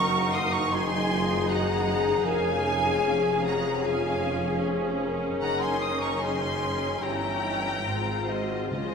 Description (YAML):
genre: classical, slow romantic movement for symphony orchestra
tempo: 76 BPM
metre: 4/4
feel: rubato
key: Db major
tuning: A4 = 440 Hz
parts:
  - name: rich symphonic violin section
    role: melody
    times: 0.0-8.9 s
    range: Eb5 to Eb6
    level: -32 LUFS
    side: left 2 dB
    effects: none
  - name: mellow small flute group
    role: second line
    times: 0.0-8.9 s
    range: Eb5 to Eb6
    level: -33 LUFS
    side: right 3 dB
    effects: none
  - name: rich symphonic violin section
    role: second line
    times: 0.0-8.9 s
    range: C5 to C6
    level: -33 LUFS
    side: left 3 dB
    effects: none
  - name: rich symphonic viola section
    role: accompaniment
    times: 0.0-8.9 s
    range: Ab3 to Bb4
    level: -33 LUFS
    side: right 1 dB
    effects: none
  - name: clear trombone section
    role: sustained chords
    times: 0.0-8.9 s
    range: Eb3 to Db4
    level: -35 LUFS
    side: right 3 dB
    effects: none
  - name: warm French horn section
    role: sustained chords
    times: 0.0-8.9 s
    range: Eb4 to C5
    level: -33 LUFS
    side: left 5 dB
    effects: none
  - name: concert harp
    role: arpeggios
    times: 0.0-8.9 s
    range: F2 to F5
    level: -32 LUFS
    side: left 10 dB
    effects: none
  - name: rich studio double bass section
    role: bass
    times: 0.0-8.9 s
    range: F1 to Db2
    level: -38 LUFS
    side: right 3 dB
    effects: none
  - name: rich symphonic cello section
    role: bass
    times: 0.0-8.9 s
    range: F2 to Db3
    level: -34 LUFS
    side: right 3 dB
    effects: none
  - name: warm tuba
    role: bass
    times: 0.0-8.9 s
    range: F1 to Db2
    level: -36 LUFS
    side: right 3 dB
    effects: none
  - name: timpani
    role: percussion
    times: 8.7-8.9 s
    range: Db3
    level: -34 LUFS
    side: left 1 dB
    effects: none
room: wet scoring stage reverb, RT60 1.7 s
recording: none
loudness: -24 LUFS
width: side -6 dB against mid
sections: 0.0-8.9 A section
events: none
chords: 0.0 Ebm7/Gb; 0.7 Ab7/Gb; 2.3 Db/F; 5.4 Ebm7/Gb; 7.0 Gdim7; 7.8 Ab13